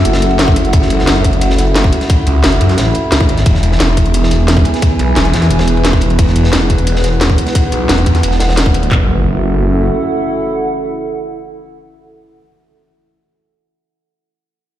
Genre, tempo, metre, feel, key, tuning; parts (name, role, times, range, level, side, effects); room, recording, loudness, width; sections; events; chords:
dark technical drum and bass; 176 BPM; 4/4; straight; F# minor; A4 = 441 Hz
dark analog pad; sustained chords; 0.0-12.4 s; B3 to F#5; -19 LUFS; right 1 dB; chorus, sidechain pumping
phased detuned saw bass; bass; 0.0-9.9 s; E1 to F#2; -13 LUFS; equal; phaser, overdrive, sidechain pumping
crunchy breakbeat drum kit; drums; 0.0-8.8 s; ride cymbal, snare drum; -23 LUFS; equal; high-pass filter on cymbals, high-pass filter on snare, high-pass filter on room
warbly tape-like pad; texture; 0.0-12.4 s; E4 to G#5; -20 LUFS; equal; chorus, built-in reverb, sidechain pumping
drum and bass drum kit; drums; 0.1-8.9 s; hi-hat, snare drum; -17 LUFS; equal
drum and bass drum kit; drums; 0.5-9.0 s; handclaps, kick drum, toms; -12 LUFS; equal
impact; sound effects; 8.9-13.1 s; -20 LUFS; equal
light reverb; played on a big sound system in a bare room, large studio reverb; -10 LUFS; side -12 dB against mid
0.0-8.9 A section; 8.9-11.6 B section
0.0 F#m7; 3.5 E; 8.9 F#m7